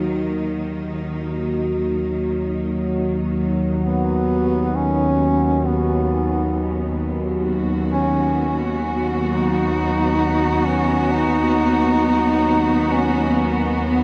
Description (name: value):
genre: ambient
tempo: free time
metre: none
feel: none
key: Eb minor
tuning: A4 = 440 Hz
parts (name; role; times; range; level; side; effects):
- rich chamber cello section; sustained chords; 0.0-14.0 s; Eb2 to Gb4; -26 LUFS; equal; none
- analog drone; drone; 0.0-14.0 s; Eb2 to Gb3; -24 LUFS; equal; chorus
- warm duduk; melody; 3.8-14.0 s; B3 to Eb4; -23 LUFS; equal; tape echo
room: wet huge ambient reverb, RT60 8.6 s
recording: dreamy mix soaked in reverb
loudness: -20 LUFS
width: mono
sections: 0.0-14.0 A section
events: fade-in on cello section 0.0-14.0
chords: 0.0 Ebm; 3.9 N.C.